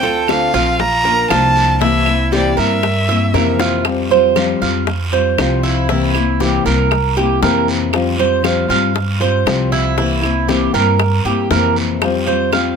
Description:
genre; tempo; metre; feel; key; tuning
latin, Cuban son and guajira; 118 BPM; 4/4; straight; F major; A4 = 440 Hz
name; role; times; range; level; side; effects
rich violin; melody; 0.0-3.6 s; D5 to Bb5; -17 LUFS; right 1 dB; none
nylon-string guitar; accompaniment; 0.0-12.8 s; C3 to F4; -18 LUFS; left 6 dB; none
Cuban tres; arpeggios; 0.0-12.8 s; E4 to F5; -18 LUFS; right 8 dB; none
upright bass; bass; 0.0-12.7 s; Bb1 to G2; -19 LUFS; right 1 dB; none
bongos; percussion; 0.0-12.8 s; none; -21 LUFS; left 10 dB; none
claves; percussion; 0.3-12.8 s; none; -22 LUFS; right 6 dB; none
guiro; percussion; 0.3-12.8 s; none; -26 LUFS; right 3 dB; none
room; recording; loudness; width
light reverb; close, detailed microphones; -13 LUFS; side -6 dB against mid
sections
0.0-3.9 A section; 3.9-12.8 B section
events
drum fill 3.3-3.9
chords
0.0 Dm7; 0.8 Bb; 1.8 C7; 3.9 Fsus2; 5.9 C7; 7.9 Fsus2; 10.0 C7; 12.0 Fsus2

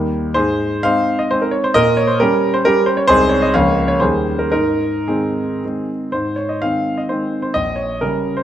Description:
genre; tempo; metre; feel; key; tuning
classical, romantic triple-time dance for piano with dotted rhythms; 102-144 BPM; 3/4; rubato; Ab major; A4 = 440 Hz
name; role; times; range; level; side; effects
clear grand piano; solo; 0.0-8.4 s; Bb1 to F5; -14 LUFS; equal; none
room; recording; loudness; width
moderate recital hall reverb, RT60 1.7 s; dark, warm production; -14 LUFS; side -11 dB against mid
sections
0.0-6.1 A section; 6.1-8.4 B section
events
none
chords
0.3 Ab; 1.7 Gdim/Bb; 3.1 Ab/C; 3.5 Bbm/Db; 4.0 Eb7; 4.5 Ab; 7.6 Gdim/Bb

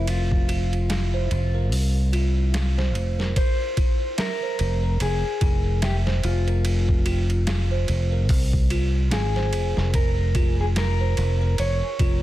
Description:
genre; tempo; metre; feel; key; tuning
trip hop; 73 BPM; 4/4; swing 59% on 16ths; F harmonic minor; A4 = 440 Hz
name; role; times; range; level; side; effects
mellow electric guitar; melody; 0.0-12.2 s; F4 to Db5; -30 LUFS; left 1 dB; vintage 12-bit sampler grit, tape echo
music box; arpeggios; 0.0-12.1 s; E4 to F5; -33 LUFS; right 5 dB; digital delay
overdriven fingered electric bass; bass; 0.0-12.2 s; F1 to C2; -22 LUFS; equal; tube saturation
boom bap sampler-style drum kit; drums; 0.1-12.2 s; hi-hat, kick drum, ride cymbal, snare drum; -26 LUFS; equal; none
room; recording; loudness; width
digital ambience; dense, heavily limited modern master; -20 LUFS; side -15 dB against mid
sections
0.0-3.4 A section; 3.4-12.2 B section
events
kick drops out 1.7-3.4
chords
0.0 F5; 3.4 C; 6.7 Bbsus2/F; 9.9 F5

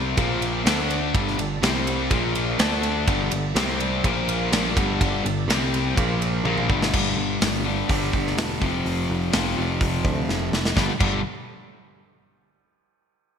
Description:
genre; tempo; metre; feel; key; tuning
hard rock; 125 BPM; 4/4; straight; unclear; A4 = 440 Hz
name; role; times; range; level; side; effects
overdriven tonewheel organ; sustained chords; 0.0-6.9 s; G3 to E5; -36 LUFS; equal; none
overdriven semi-hollow guitar; riff; 0.0-11.2 s; F2 to D4; -26 LUFS; left 10 dB; none
sludgy distorted guitar; riff; 0.0-11.2 s; F2 to D4; -28 LUFS; right 9 dB; overdrive
picked electric bass; bass; 0.0-11.2 s; E1 to D2; -28 LUFS; equal; none
big rock drum kit; drums; 0.2-11.1 s; crash cymbal, hi-hat, kick drum, ride cymbal, snare drum, toms; -24 LUFS; equal; gated reverb
room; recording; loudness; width
moderate lush hall reverb, RT60 2.1 s; bright 1980s-style digital production; -20 LUFS; side -7 dB against mid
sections
0.0-6.9 A section; 6.9-10.8 B section; 10.8-12.7 C section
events
drum fill 6.5-6.9, 10.3-10.8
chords
0.2 Bb5; 0.7 D5; 1.1 G5; 1.6 C5; 2.1 Bb5; 2.6 D5; 3.1 G5; 3.6 C5; 4.0 Bb5; 4.5 G5; 5.5 C5; 6.0 Bb5; 6.5 G5; 8.6 F5; 10.8 G5

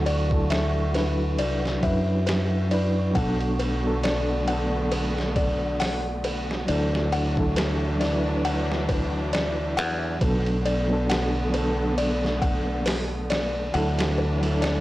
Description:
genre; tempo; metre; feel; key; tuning
trip hop; 68 BPM; 4/4; swing 56% on 16ths; B minor; A4 = 440 Hz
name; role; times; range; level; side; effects
mellow reed electric piano; accompaniment; 0.0-14.8 s; F#3 to B4; -28 LUFS; equal; fast tremolo, harmonic tremolo, tape echo
fingered electric bass; bass; 0.0-14.8 s; B1 to F#2; -27 LUFS; equal; none
wind-like tuned noise texture; texture; 0.0-14.8 s; F#4; -40 LUFS; right 2 dB; built-in reverb
music box; arpeggios; 0.1-14.8 s; B4 to F#5; -30 LUFS; left 2 dB; low-pass filter, tape echo
trip hop sampler-style drum kit; drums; 0.1-14.8 s; hi-hat, kick drum, ride cymbal, snare drum; -29 LUFS; equal; overdrive
warm studio string section; sustained chords; 3.2-14.8 s; D3 to D4; -32 LUFS; equal; none
room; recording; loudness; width
little or no reverb; dry, gritty hardware recording; -22 LUFS; side -16 dB against mid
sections
0.0-14.8 A section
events
none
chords
0.0 Dadd9; 3.2 Bm7; 6.7 Dadd9; 10.2 Bm7; 13.7 Dadd9

